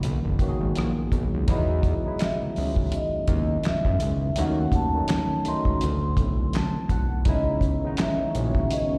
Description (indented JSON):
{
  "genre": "R&B, neo-soul",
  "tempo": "83 BPM",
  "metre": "4/4",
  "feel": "swing 57% on 16ths",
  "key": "unclear",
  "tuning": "A4 = 441 Hz",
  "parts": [
    { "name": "vibraphone with soft mallets", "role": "melody", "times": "0.0-9.0 s", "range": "D#5 to C6", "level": "-32 LUFS", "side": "equal", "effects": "slapback echo" },
    { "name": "barky tine electric piano", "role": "accompaniment", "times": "0.0-9.0 s", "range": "D3 to A5", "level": "-31 LUFS", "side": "equal", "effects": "lush chorus, slapback echo" },
    { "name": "fat analog bass", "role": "bass", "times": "0.0-9.0 s", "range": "F#1 to F#2", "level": "-28 LUFS", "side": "equal", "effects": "none" },
    { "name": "cloth-damped thuddy drum kit", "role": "drums", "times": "0.0-8.9 s", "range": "handclaps, hi-hat, kick drum, rim click, snare drum", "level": "-28 LUFS", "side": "equal", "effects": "none" },
    { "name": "warm analog pad", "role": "sustained chords", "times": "7.3-9.0 s", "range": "C#3 to C#5", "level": "-34 LUFS", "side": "equal", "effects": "chorus" }
  ],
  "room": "light reverb",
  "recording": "live gig heard through the venue's PA, recital hall reverb",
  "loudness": "-24 LUFS",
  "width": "mono",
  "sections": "0.0-1.5 A section; 1.5-9.0 B section",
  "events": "tine electric piano fill 6.2-7.3",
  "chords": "0.0 Bmaj7; 1.5 Emaj9; 4.4 D#m7b5; 5.8 D9; 7.3 C#m9"
}